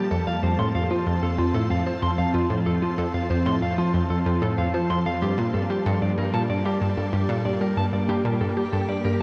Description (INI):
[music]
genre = ambient, sequencer-driven space music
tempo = 94 BPM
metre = 4/4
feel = straight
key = unclear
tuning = A4 = 439 Hz
[part]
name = evolving wavetable pad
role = sustained chords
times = 0.0-9.2 s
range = F3 to A5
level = -30 LUFS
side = equal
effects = ensemble chorus, built-in reverb, phaser
[part]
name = clean electric guitar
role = arpeggios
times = 0.0-9.2 s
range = F4 to C6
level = -31 LUFS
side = equal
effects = tape echo
[part]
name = analog pluck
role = riff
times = 0.0-9.2 s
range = F2 to G3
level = -26 LUFS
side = equal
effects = chorus, tape echo
[sound]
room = wet shimmer reverb, RT60 6.2 s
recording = worn, warbling old tape, cassette tape, warbly pitch drift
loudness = -24 LUFS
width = mono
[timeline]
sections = 0.0-9.2 A section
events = none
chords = 0.1 F; 5.2 Gmadd9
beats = | 0.11 0.75 1.39 2.03 | 2.67 3.30 3.94 4.58 | 5.22 5.86 6.50 7.13 | 7.77 8.41 9.05